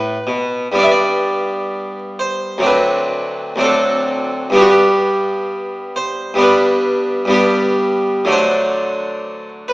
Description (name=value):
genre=classical, baroque-style suite movement for harpsichord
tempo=64 BPM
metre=4/4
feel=rubato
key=G major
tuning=A4 = 440 Hz
part: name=harpsichord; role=solo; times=0.0-9.7 s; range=D2 to E5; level=-14 LUFS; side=equal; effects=none
room=wet recital hall reverb, RT60 1.3 s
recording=small speaker sound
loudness=-13 LUFS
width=side -19 dB against mid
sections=0.8-9.7 A section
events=none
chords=0.0 C (rootless); 0.8 G; 2.6 D7; 4.5 G; 8.3 D